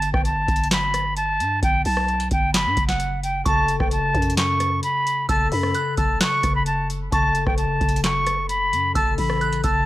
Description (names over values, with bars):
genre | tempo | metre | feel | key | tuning
hip hop, trap | 131 BPM | 4/4 | half-time | F# phrygian | A4 = 440 Hz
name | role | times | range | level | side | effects
silver concert flute | melody | 0.0-9.9 s | F#5 to C#6 | -22 LUFS | equal | low-pass filter
concert harp | accompaniment | 0.0-9.9 s | C#3 to A4 | -29 LUFS | left 5 dB | low-pass filter
growling 808-style bass | bass | 0.0-9.9 s | F#1 to G2 | -26 LUFS | equal | none
booming analog drum machine | drums | 0.0-9.8 s | handclaps, hi-hat, kick drum, rim click, snare drum | -24 LUFS | equal | none
delicate synth tine bell | second line | 3.5-9.9 s | C#6 to F#6 | -30 LUFS | right 4 dB | chorus, analog delay
room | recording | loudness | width
digital ambience | dry, gritty hardware recording | -19 LUFS | side -15 dB against mid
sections
0.0-9.9 A section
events
break 0.0-3.5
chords
0.0 G; 3.5 F#m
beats
0.25 0.71 1.17 | 1.63 2.08 2.54 3.00 | 3.46 3.92 4.38 4.83 | 5.29 5.75 6.21 6.67 | 7.12 7.58 8.04 8.50 | 8.96 9.41